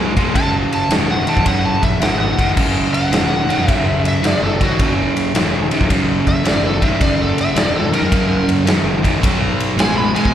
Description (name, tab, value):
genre	blues rock power trio and southern rock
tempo	108 BPM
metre	4/4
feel	swing 66% on 8ths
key	unclear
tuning	A4 = 443 Hz
part	crunchy overdriven guitar	riff	0.0-10.3 s	F#2 to G#3	-17 LUFS	equal	slapback echo
part	overdriven fingered electric bass	bass	0.0-10.3 s	E1 to B2	-22 LUFS	equal	none
part	big rock drum kit	drums	0.2-10.3 s	crash cymbal, kick drum, ride cymbal, snare drum	-19 LUFS	equal	none
part	overdriven slide guitar	melody	0.4-10.3 s	F#4 to B5	-22 LUFS	equal	slapback echo
room	studio ambience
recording	live gig heard through the venue's PA, recital hall reverb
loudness	-14 LUFS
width	side -10 dB against mid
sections	0.0-10.3 A section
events	electric slide guitar solo 0.0-10.3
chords	0.3 F#7(no3); 9.2 B5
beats	| 0.34 0.90 1.45 2.01 | 2.56 3.12 3.67 4.23 | 4.78 5.34 5.89 6.45 | 7.00 7.56 8.11 8.67 | 9.22 9.78 10.33